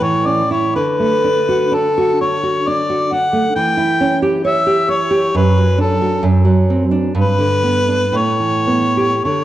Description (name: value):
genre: romantic duo for harmonica and classical guitar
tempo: 52-68 BPM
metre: 3/4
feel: rubato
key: D major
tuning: A4 = 441 Hz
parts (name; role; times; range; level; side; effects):
- warm harmonica; melody; 0.0-9.4 s; A4 to G5; -17 LUFS; left 2 dB; none
- nylon-string guitar; accompaniment; 0.0-9.4 s; F#2 to C#5; -15 LUFS; right 2 dB; none
room: moderate scoring stage reverb, RT60 1.9 s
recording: worn, warbling old tape, cassette tape, warbly pitch drift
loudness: -13 LUFS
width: side -13 dB against mid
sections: 0.0-9.4 A section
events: none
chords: 0.0 A; 0.8 D; 3.6 C#dim/E; 5.3 D/F#; 6.2 D7/F#; 7.2 G; 8.2 A9